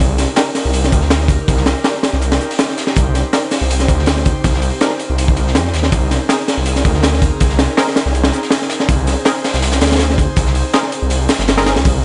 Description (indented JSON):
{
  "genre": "drum and bass, jungle",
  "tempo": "162 BPM",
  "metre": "4/4",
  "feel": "swing 54% on 16ths",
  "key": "C minor",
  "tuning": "A4 = 440 Hz",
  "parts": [
    { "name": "airy breathy pad", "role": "sustained chords", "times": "0.0-12.0 s", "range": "C4 to C5", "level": "-27 LUFS", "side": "equal", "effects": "chorus" },
    { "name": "detuned saw bass", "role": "bass", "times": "0.0-12.0 s", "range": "G1 to F2", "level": "-18 LUFS", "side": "equal", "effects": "tube saturation" },
    { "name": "crunchy breakbeat drum kit", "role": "drums", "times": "0.0-11.9 s", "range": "hi-hat, kick drum, snare drum", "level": "-18 LUFS", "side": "equal", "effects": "none" },
    { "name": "crunchy breakbeat drum kit", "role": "drums", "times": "0.0-11.9 s", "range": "hi-hat, snare drum", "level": "-28 LUFS", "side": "equal", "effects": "high-pass filter on hats, high-pass filter on snare, high-pass filter on room" },
    { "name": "filtered dub chord stab", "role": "stabs", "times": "0.4-11.7 s", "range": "C4 to Bb4", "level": "-25 LUFS", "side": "equal", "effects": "chorus, cassette tape, dub echo" }
  ],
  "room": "small room ambience",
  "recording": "nothing above 10.6 kHz",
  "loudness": "-15 LUFS",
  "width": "mono",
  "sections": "0.0-12.0 A section",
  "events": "drop 0.0-12.0; kick drops out 11.1-11.8",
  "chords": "0.0 Cm7; 5.9 Abadd9/C"
}